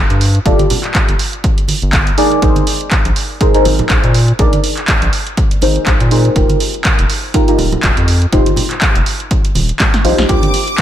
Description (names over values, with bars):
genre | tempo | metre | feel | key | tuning
deep house | 122 BPM | 4/4 | swing 56% on 16ths | unclear | A4 = 440 Hz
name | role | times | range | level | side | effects
round analog bass | bass | 0.0-10.4 s | Eb1 to Bb2 | -14 LUFS | equal | sidechain pumping
punchy analog drum machine | drums | 0.1-10.8 s | handclaps, hi-hat, snare drum | -18 LUFS | right 1 dB | none
deep mellow chord stab | stabs | 0.5-10.5 s | D4 to D5 | -16 LUFS | equal | chorus, phaser, sidechain pumping, analog delay
electronic kick drum | drums | 0.5-10.8 s | none | -15 LUFS | equal | none
congas | percussion | 0.6-10.5 s | none | -23 LUFS | right 3 dB | none
bell-like tine electric piano | melody | 10.3-10.6 s | G4 | -20 LUFS | equal | ping-pong delay
clear studio violin section | texture | 10.3-10.8 s | D6 | -19 LUFS | left 1 dB | sidechain pumping
room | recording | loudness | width
light reverb, digital ambience | none | -10 LUFS | side -11 dB against mid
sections
0.0-10.8 A section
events
drum fill 9.8-10.3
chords
0.0 G7sus2; 2.2 Bb9sus4; 6.4 F9sus4; 10.3 C9sus4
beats
| 0.46 0.95 1.44 1.93 | 2.42 2.92 3.41 3.90 | 4.39 4.88 5.37 5.87 | 6.36 6.85 7.34 7.83 | 8.32 8.82 9.31 9.80 | 10.29 10.78